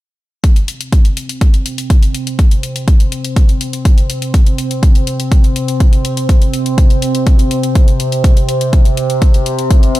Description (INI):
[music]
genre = melodic techno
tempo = 123 BPM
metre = 4/4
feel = straight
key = unclear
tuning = A4 = 439 Hz
[part]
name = analog drone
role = drone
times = 0.8-10.0 s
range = C3 to C4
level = -18 LUFS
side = right 1 dB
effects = chorus, sidechain pumping
[part]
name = electronic hi-hat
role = drums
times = 0.4-10.0 s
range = none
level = -24 LUFS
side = left 4 dB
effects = overdrive, sidechain pumping on hats, studio reverb
[part]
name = electronic kick drum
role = drums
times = 0.4-9.8 s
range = none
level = -9 LUFS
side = equal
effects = overdrive, studio reverb
[sound]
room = light reverb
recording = none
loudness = -10 LUFS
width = side -16 dB against mid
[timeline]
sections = 0.4-10.0 A section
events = none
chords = none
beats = | 0.44 0.93 1.41 1.90 | 2.39 2.88 3.36 3.85 | 4.34 4.83 5.32 5.80 | 6.29 6.78 7.27 7.75 | 8.24 8.73 9.22 9.71